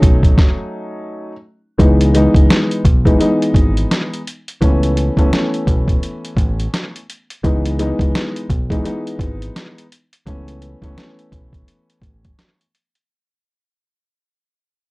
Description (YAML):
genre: hip hop, boom-bap hip-hop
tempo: 85 BPM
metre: 4/4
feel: swing 60% on 16ths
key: C# minor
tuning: A4 = 440 Hz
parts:
  - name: dark concert grand piano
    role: accompaniment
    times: 0.0-12.6 s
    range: E3 to D#4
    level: -18 LUFS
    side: equal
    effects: cassette tape, high-pass filter, low-pass filter
  - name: deep dub fingered electric bass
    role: bass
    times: 0.0-12.3 s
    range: G#1 to C#2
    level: -18 LUFS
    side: equal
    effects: transformer saturation
  - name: trip hop sampler-style drum kit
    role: drums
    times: 0.0-13.1 s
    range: hi-hat, kick drum, snare drum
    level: -15 LUFS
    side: equal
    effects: none
room: little or no reverb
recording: dry, gritty hardware recording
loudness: -13 LUFS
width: side -23 dB against mid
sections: 0.0-1.8 A section; 1.8-13.1 B section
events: stop 0.4-1.8; fade-out 1.8-13.1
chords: 0.0 B7; 1.8 C#m7; 4.6 Aadd9; 7.4 C#m7; 10.3 Aadd9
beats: 0.38 1.08 | 1.79 2.50 3.20 3.91 | 4.61 5.32 6.03 6.73 | 7.44 8.14 8.85 9.55 | 10.26 10.97 11.67 12.38